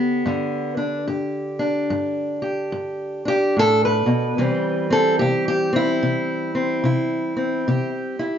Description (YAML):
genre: acoustic country blues, solo or duo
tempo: 73 BPM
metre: 4/4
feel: swing 62% on 8ths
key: G major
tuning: A4 = 438 Hz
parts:
  - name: fingerpicked steel-string acoustic guitar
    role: solo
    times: 0.0-8.4 s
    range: G2 to B4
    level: -19 LUFS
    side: equal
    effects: none
room: moderate studio reverb, RT60 0.5 s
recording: nothing above 7.5 kHz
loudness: -19 LUFS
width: side -8 dB against mid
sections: 0.0-8.4 A section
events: none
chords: 0.0 G; 4.4 C